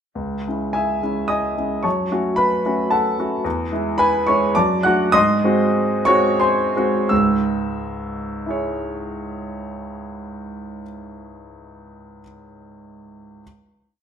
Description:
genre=classical, romantic character piece for solo piano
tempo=83-115 BPM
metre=3/4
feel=rubato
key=C# minor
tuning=A4 = 440 Hz
part: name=clear grand piano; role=solo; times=0.2-13.4 s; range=C#2 to F#6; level=-18 LUFS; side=equal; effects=none
room=wet large studio reverb, RT60 1.3 s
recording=minimal, uncompressed stereo recording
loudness=-17 LUFS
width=side -8 dB against mid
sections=0.2-7.1 A section; 7.1-11.2 final chord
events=slowing down 2.6-7.1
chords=0.2 C#m; 1.8 F#m; 3.5 C#m/E; 4.6 D/F#; 5.1 G#7; 7.1 C#m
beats=| 0.20 0.76 1.30 | 1.85 2.38 2.92 | 3.45 3.99 4.56 | 5.14 5.75 6.41 | 7.11 7.78 8.47 | 9.15 9.84 10.53

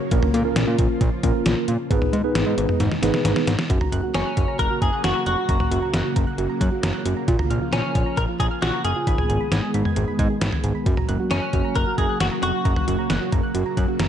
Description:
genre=synth-pop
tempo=134 BPM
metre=4/4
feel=straight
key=F# major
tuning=A4 = 440 Hz
part: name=string machine, cellos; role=sustained chords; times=0.0-14.1 s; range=B2 to G#4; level=-27 LUFS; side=equal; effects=ensemble chorus
part: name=mellow tine electric piano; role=accompaniment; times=0.1-3.5 s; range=A#3 to B4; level=-24 LUFS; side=right 2 dB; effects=medium stereo tremolo
part: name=fat analog bass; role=bass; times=0.1-14.1 s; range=E#1 to A#2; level=-24 LUFS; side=equal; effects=none
part: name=detuned 8-bit digital drum machine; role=drums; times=0.1-14.1 s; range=cowbell, hi-hat, kick drum, snare drum, toms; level=-23 LUFS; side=equal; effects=none
part: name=soft round pluck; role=arpeggios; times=3.7-14.1 s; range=E#4 to G#6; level=-29 LUFS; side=right 7 dB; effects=chorus, tape echo
part: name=direct-recorded clean electric guitar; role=melody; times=4.1-13.3 s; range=C#4 to A#4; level=-25 LUFS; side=left 2 dB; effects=analog chorus, tape echo
room=light reverb, digital ambience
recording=nothing above 10.9 kHz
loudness=-19 LUFS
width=side -9 dB against mid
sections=0.0-3.7 A section; 3.7-14.1 B section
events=drum fill 2.8-3.7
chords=0.1 A#m; 1.9 G#m; 3.7 F#; 7.3 A#m; 9.1 G#m; 10.9 F#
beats=| 0.11 0.56 1.01 1.46 | 1.91 2.35 2.80 3.25 | 3.70 4.14 4.59 5.04 | 5.49 5.93 6.38 6.83 | 7.28 7.73 8.17 8.62 | 9.07 9.52 9.96 10.41 | 10.86 11.31 11.76 12.20 | 12.65 13.10 13.55 13.99

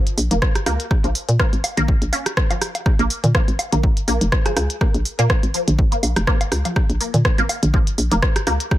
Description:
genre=minimal techno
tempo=123 BPM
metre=4/4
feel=swing 55% on 16ths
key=Bb minor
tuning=A4 = 441 Hz
part: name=hollow knocking FM bass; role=bass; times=0.0-8.6 s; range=F1 to Bb2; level=-19 LUFS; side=equal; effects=sidechain pumping
part: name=minimal click drum kit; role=drums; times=0.1-8.7 s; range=hi-hat, rim click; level=-24 LUFS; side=equal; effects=none
part: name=resonant blip pluck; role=riff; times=0.3-8.5 s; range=F3 to Db4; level=-26 LUFS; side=equal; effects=phaser, ensemble chorus, sidechain pumping, tape echo
part: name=electronic kick drum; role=drums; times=0.4-8.8 s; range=none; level=-18 LUFS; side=equal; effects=none
part: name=booming analog drum machine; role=percussion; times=0.6-8.8 s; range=rim click, toms, woodblock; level=-24 LUFS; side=right 1 dB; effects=tape echo
part: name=thumb-piano-like synth pluck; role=melody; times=4.5-4.7 s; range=Ab4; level=-29 LUFS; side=right 1 dB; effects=chorus, tape echo
room=little or no reverb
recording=none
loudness=-16 LUFS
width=side -14 dB against mid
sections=0.0-8.8 A section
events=none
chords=0.0 Bb5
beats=0.42 | 0.91 1.40 1.88 2.37 | 2.86 3.35 3.83 4.32 | 4.81 5.30 5.79 6.27 | 6.76 7.25 7.74 8.22 | 8.71

